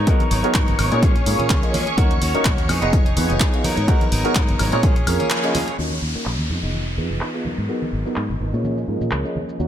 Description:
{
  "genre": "filtered disco house",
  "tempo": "126 BPM",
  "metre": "4/4",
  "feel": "swing 55% on 16ths",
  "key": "unclear",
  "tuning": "A4 = 440 Hz",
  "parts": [
    { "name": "phased string machine", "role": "sustained chords", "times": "0.0-9.7 s", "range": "Db5 to Eb6", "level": "-28 LUFS", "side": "equal", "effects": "ensemble chorus, phaser, sidechain pumping, low-pass filter" },
    { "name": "clean electric guitar", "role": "riff", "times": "0.0-9.7 s", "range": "F3 to Bb4", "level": "-27 LUFS", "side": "equal", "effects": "sidechain pumping, low-pass filter" },
    { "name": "fingered electric bass", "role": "bass", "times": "0.0-9.7 s", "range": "F1 to Bb2", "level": "-23 LUFS", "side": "equal", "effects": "sidechain pumping, low-pass filter" },
    { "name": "warm grand piano", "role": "accompaniment", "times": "0.1-9.7 s", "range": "Bb3 to F5", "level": "-25 LUFS", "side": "right 1 dB", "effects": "phaser, sidechain pumping, low-pass filter" },
    { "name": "electronic kick drum", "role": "drums", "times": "0.1-4.9 s", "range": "none", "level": "-18 LUFS", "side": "equal", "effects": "none" },
    { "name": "punchy analog drum machine", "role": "drums", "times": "0.1-9.7 s", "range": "handclaps, hi-hat, shaker, woodblock", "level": "-26 LUFS", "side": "equal", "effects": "sidechain pumping on hats, low-pass filter on hats, low-pass filter on snare, sidechain pumping on perc, low-pass filter on perc, low-pass filter on room" },
    { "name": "tambourine and congas", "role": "percussion", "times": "0.1-9.7 s", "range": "none", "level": "-32 LUFS", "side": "right 2 dB", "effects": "none" },
    { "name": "downlifter", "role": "sound effects", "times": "5.8-9.6 s", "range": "none", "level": "-32 LUFS", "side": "equal", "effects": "none" }
  ],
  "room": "light reverb",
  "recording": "none",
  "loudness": "-17 LUFS",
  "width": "side -10 dB against mid",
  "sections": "0.0-5.8 A section; 5.8-9.7 B section",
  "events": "break 5.3-5.8; band accent 5.3; filter sweep 5.8-9.7",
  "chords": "0.0 Abm9; 1.0 Bbm7; 2.0 Ebm7; 2.7 Fm7b5; 3.6 Abm9; 4.8 Bbm7; 5.8 Ebm7; 6.5 Fm7b5; 7.5 Abm9; 8.6 Bbm7",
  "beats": "| 0.07 0.55 1.02 1.50 | 1.98 2.45 2.93 3.40 | 3.88 4.36 4.83 5.31 | 5.79 6.26 6.74 7.21 | 7.69 8.17 8.64 9.12 | 9.60"
}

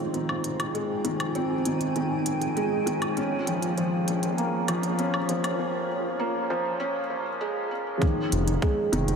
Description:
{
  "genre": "piano and strings electronica",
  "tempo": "99 BPM",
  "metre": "4/4",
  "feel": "straight",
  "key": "F minor",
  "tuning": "A4 = 440 Hz",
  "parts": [
    { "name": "granular cloud pad", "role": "sustained chords", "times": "0.0-9.2 s", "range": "Bb3 to Ab5", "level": "-34 LUFS", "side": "right 1 dB", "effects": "built-in reverb, sidechain pumping" },
    { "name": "felt-muted upright piano", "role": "riff", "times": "0.0-9.2 s", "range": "Eb3 to Db4", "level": "-26 LUFS", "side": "equal", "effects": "wide subtle chorus, ping-pong delay" },
    { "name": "dark detuned saw bass", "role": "bass", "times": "0.0-9.2 s", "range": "F1 to Bb1", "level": "-32 LUFS", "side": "equal", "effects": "none" },
    { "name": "electronic hi-hat and woodblock", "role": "drums", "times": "0.1-9.2 s", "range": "none", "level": "-35 LUFS", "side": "equal", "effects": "overdrive" },
    { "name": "electronic kick drum", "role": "drums", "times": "8.0-8.7 s", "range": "none", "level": "-25 LUFS", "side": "equal", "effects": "overdrive" }
  ],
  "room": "wet huge ambient reverb, RT60 8.9 s",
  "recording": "dreamy mix soaked in reverb, high-pass filter",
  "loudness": "-24 LUFS",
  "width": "side -6 dB against mid",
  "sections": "0.0-8.0 A section; 8.0-9.2 B section",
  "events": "build-up 0.0-8.0; filter sweep 0.0-8.0; break 5.6-8.0; drop 8.0-9.2",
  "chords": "0.0 Fm7; 3.2 Bbm7; 8.0 Fm7",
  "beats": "0.14 | 0.75 1.36 1.96 2.57 | 3.18 3.78 4.39 4.99 | 5.60 6.21 6.81 7.42 | 8.02 8.63"
}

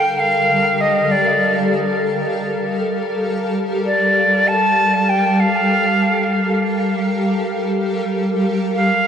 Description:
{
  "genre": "ambient",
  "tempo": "free time",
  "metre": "none",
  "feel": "none",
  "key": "G minor",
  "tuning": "A4 = 438 Hz",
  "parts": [
    { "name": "silver concert flute", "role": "melody", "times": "0.0-9.1 s", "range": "D5 to A5", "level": "-17 LUFS", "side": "equal", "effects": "dub echo" },
    { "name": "granular cloud pad", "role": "sustained chords", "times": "0.0-9.1 s", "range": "D3 to F5", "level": "-18 LUFS", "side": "equal", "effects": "built-in reverb" }
  ],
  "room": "wet echo chamber reverb, RT60 1.5 s, small room ambience",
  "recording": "none",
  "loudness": "-15 LUFS",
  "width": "side -8 dB against mid",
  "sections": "0.0-9.1 A section",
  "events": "none",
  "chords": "0.0 Gm7",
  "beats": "free time"
}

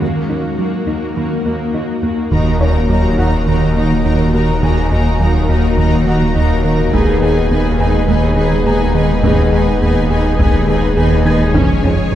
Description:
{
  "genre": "cinematic, hybrid orchestral and electronic film score",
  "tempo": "104 BPM",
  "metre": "4/4",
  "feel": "straight",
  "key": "Eb minor",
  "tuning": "A4 = 439 Hz",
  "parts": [
    { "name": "rich symphonic viola section", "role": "accompaniment", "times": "0.0-12.2 s", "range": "F3 to Ab4", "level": "-22 LUFS", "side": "equal", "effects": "none" },
    { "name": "ethereal airy pad", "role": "sustained chords", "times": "0.0-12.2 s", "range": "Ab3 to Db5", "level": "-21 LUFS", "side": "left 1 dB", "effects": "ensemble chorus, built-in reverb" },
    { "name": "thumb-piano-like synth pluck", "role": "arpeggios", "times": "0.0-12.2 s", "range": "Db3 to Ab4", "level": "-22 LUFS", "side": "right 2 dB", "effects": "chorus, digital delay" },
    { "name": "rich symphonic cello section", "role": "bass", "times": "0.0-12.2 s", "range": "Eb2 to F2", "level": "-22 LUFS", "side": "right 1 dB", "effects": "none" },
    { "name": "felt-muted upright piano", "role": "texture", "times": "0.0-12.2 s", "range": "Db4 to Ab6", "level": "-28 LUFS", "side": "left 2 dB", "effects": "digital delay" },
    { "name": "rich symphonic violin section", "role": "second line", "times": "2.3-12.2 s", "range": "Bb4 to Bb5", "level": "-24 LUFS", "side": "left 2 dB", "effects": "none" },
    { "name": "mellow French horn section", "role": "sustained chords", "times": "2.3-12.2 s", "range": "Gb3 to Db4", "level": "-24 LUFS", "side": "left 3 dB", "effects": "none" },
    { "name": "round analog bass", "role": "riff", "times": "2.3-12.2 s", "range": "Eb2 to Eb3", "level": "-17 LUFS", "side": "right 1 dB", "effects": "none" },
    { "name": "pure sine sub bass", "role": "bass", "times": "2.3-12.2 s", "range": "Eb1 to F1", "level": "-20 LUFS", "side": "equal", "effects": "none" },
    { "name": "rich symphonic double bass section", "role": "bass", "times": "2.3-12.2 s", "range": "F1 to Eb2", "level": "-22 LUFS", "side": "right 1 dB", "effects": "none" },
    { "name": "taiko ensemble", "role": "drums", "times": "2.3-3.4, 6.9-12.1 s", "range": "none", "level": "-20 LUFS", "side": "equal", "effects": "none" }
  ],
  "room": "wet concert hall reverb, RT60 2.3 s",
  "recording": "heard from further back in the room",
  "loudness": "-12 LUFS",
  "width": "side -12 dB against mid",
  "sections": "0.0-2.3 A section; 2.3-12.2 A section",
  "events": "none",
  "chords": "0.0 Ebm; 6.9 Abm/Eb; 11.5 Db/F",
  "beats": "| 0.01 0.58 1.16 1.74 | 2.31 2.89 3.47 4.04 | 4.62 5.20 5.78 6.35 | 6.93 7.51 8.08 8.66 | 9.24 9.81 10.39 10.97 | 11.54 12.12"
}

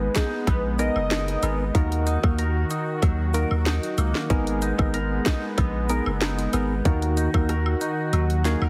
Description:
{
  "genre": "dancehall",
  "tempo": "94 BPM",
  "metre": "4/4",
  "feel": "straight",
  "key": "G# minor",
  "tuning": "A4 = 440 Hz",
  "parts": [
    { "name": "warm velvety synth lead", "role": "second line", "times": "0.0-2.0 s", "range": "G#4 to D#5", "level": "-32 LUFS", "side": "equal", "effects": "chorus, delay" },
    { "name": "warm analog pad", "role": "sustained chords", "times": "0.0-8.7 s", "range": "D#3 to F#4", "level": "-33 LUFS", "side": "equal", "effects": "chorus, tremolo, sidechain pumping" },
    { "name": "direct-recorded clean electric guitar", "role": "arpeggios", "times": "0.0-8.7 s", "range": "D#3 to A#4", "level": "-33 LUFS", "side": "equal", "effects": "lush chorus, delay" },
    { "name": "punchy sub bass", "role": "bass", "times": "0.0-8.7 s", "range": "F#1 to D#2", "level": "-27 LUFS", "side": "equal", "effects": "none" },
    { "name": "island pop drum kit", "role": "drums", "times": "0.2-8.6 s", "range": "hi-hat, kick drum, rim click, snare drum", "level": "-27 LUFS", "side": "equal", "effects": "none" },
    { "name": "cabasa and woodblock", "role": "percussion", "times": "0.2-8.7 s", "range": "none", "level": "-37 LUFS", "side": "equal", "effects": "none" },
    { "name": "percussive organ stab", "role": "accompaniment", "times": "0.8-8.7 s", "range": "A#3 to A#4", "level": "-31 LUFS", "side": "equal", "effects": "chorus" }
  ],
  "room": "light reverb, digital ambience",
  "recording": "heavily compressed radio sound",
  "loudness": "-24 LUFS",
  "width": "mono",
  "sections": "0.0-8.7 A section",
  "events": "kick muted 8.1-8.7",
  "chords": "0.0 G#madd9; 1.7 D#m; 4.3 G#madd9; 6.9 D#m",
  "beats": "0.47 1.11 | 1.75 2.39 3.02 3.66 | 4.30 4.94 5.58 6.22 | 6.85 7.49 8.13"
}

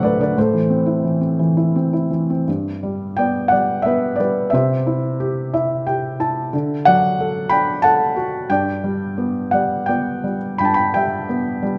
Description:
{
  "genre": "classical, lyrical solo piano",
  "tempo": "83-92 BPM",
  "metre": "3/4",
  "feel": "rubato",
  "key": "unclear",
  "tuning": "A4 = 440 Hz",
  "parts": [
    { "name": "felt-muted upright piano", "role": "solo", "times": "0.0-11.8 s", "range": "D2 to B5", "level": "-19 LUFS", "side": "equal", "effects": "none" }
  ],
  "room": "moderate scoring stage reverb, RT60 2.1 s",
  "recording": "none",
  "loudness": "-19 LUFS",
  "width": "mono",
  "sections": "0.0-2.5 A section; 2.5-11.8 B section",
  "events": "felt piano fill 5.2-6.5",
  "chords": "0.4 Am; 2.5 G; 4.5 C; 6.5 D; 8.5 G",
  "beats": "| 0.36 1.05 1.75 | 2.47 3.17 3.85 | 4.52 5.19 5.86 | 6.53 7.19 7.84 | 8.50 9.18 9.88 | 10.59 11.29"
}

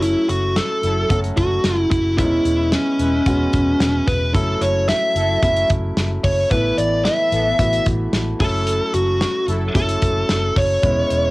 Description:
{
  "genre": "1980s-style pop",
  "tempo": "111 BPM",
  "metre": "4/4",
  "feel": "straight",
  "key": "unclear",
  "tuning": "A4 = 439 Hz",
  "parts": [
    { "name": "fuzz lead guitar", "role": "melody", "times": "0.0-11.3 s", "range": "C#4 to E5", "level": "-19 LUFS", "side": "equal", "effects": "distortion" },
    { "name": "warm concert grand piano", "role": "accompaniment", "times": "0.0-11.3 s", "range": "E3 to F#4", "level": "-25 LUFS", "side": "equal", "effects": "cassette tape" },
    { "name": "vintage muted fingered electric bass", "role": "bass", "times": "0.0-11.3 s", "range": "E1 to A1", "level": "-22 LUFS", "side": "equal", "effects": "none" },
    { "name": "modern studio drum kit", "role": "drums", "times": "0.0-11.2 s", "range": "hi-hat, kick drum, snare drum", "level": "-22 LUFS", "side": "equal", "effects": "cassette tape" },
    { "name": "analog synth brass", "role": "stabs", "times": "0.8-9.7 s", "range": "E3 to B4", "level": "-27 LUFS", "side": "equal", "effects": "chorus, cassette tape" }
  ],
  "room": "light reverb",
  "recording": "home recording on cassette",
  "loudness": "-16 LUFS",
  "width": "side -20 dB against mid",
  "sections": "0.0-11.3 A section",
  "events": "none",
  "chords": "0.0 F#m7; 2.2 C#m7/E; 4.3 F#m7; 6.5 Asus2; 8.4 F#m7",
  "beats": "| 0.02 0.56 1.10 1.65 | 2.19 2.73 3.27 3.81 | 4.35 4.89 5.43 5.97 | 6.51 7.05 7.59 8.13 | 8.67 9.21 9.75 10.29 | 10.84"
}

